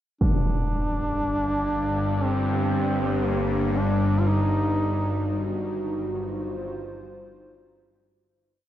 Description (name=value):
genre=dark ambient drone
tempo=free time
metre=none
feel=none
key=unclear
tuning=A4 = 440 Hz
part: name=mellow duduk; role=melody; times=0.2-5.8 s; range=Bb3 to F4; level=-27 LUFS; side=equal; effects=diffuse ambient delay
part: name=bowed-like drone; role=drone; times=0.7-8.4 s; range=G1 to G2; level=-25 LUFS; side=equal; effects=built-in reverb, phaser
part: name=impact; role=percussion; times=0.2-0.4 s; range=none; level=-25 LUFS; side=equal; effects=low-pass filter on sfx
part: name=dark analog pad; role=sustained chords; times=5.1-8.3 s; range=Eb4 to C5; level=-33 LUFS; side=equal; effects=chorus
room=moderate huge ambient reverb, RT60 8.2 s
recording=worn, warbling old tape, cassette tape, warbly pitch drift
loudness=-22 LUFS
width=side -12 dB against mid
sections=0.2-8.3 A section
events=fade-out 4.3-8.3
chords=0.2 N.C.; 4.3 Ebmadd9